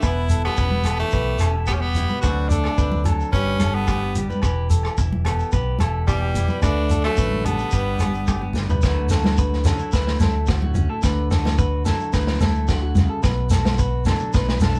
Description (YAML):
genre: highlife guitar band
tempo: 109 BPM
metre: 4/4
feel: straight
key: D major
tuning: A4 = 440 Hz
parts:
  - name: raspy tenor saxophone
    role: melody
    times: 0.0-8.6 s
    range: G3 to F#4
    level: -28 LUFS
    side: equal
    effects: none
  - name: raspy alto saxophone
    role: second line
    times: 0.0-8.6 s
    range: E3 to D4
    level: -36 LUFS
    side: equal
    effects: none
  - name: clean electric guitar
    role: accompaniment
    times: 0.0-14.8 s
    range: G2 to G4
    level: -32 LUFS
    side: equal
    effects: none
  - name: electric guitar at the edge of break-up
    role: arpeggios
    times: 0.0-14.8 s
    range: F#4 to B4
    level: -31 LUFS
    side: equal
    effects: none
  - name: fingered electric bass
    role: bass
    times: 0.0-14.8 s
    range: E1 to D2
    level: -25 LUFS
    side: equal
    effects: none
  - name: warm soul drum kit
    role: drums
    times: 0.0-14.7 s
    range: hi-hat, kick drum, rim click, snare drum, toms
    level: -26 LUFS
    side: equal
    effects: none
  - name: agogo bells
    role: percussion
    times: 0.0-8.4 s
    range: none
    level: -38 LUFS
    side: equal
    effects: none
  - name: shekere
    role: percussion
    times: 0.0-14.8 s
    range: none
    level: -27 LUFS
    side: equal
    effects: none
  - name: congas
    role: percussion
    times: 0.7-14.7 s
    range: none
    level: -29 LUFS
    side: equal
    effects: none
room: wet small room reverb, RT60 0.5 s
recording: band playing live in one room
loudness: -21 LUFS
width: mono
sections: 0.0-8.8 A section; 8.8-14.8 B section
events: drum fill 8.3-8.8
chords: 0.0 Em; 2.2 D7; 3.3 G; 4.4 Em; 6.6 D; 7.7 G; 8.8 Dadd9; 13.2 Bm